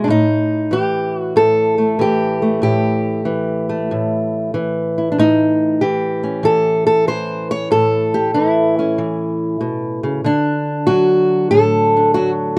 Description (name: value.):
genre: acoustic country blues, solo or duo.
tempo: 94 BPM.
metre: 4/4.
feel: swing 68% on 8ths.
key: A mixolydian.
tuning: A4 = 441 Hz.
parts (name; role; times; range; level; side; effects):
fingerpicked old ladder-braced acoustic guitar; solo; 0.0-12.6 s; A2 to C#5; -17 LUFS; equal; none.
room: light reverb.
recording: dry, close 1970s-style studio recording.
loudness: -17 LUFS.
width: mono.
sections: 0.1-12.6 A section.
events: none.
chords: 0.1 A7; 10.2 D.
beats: | 0.08 0.71 1.35 1.99 | 2.62 3.26 3.89 4.53 | 5.16 5.80 6.43 7.07 | 7.70 8.34 8.97 9.61 | 10.24 10.88 11.51 12.15.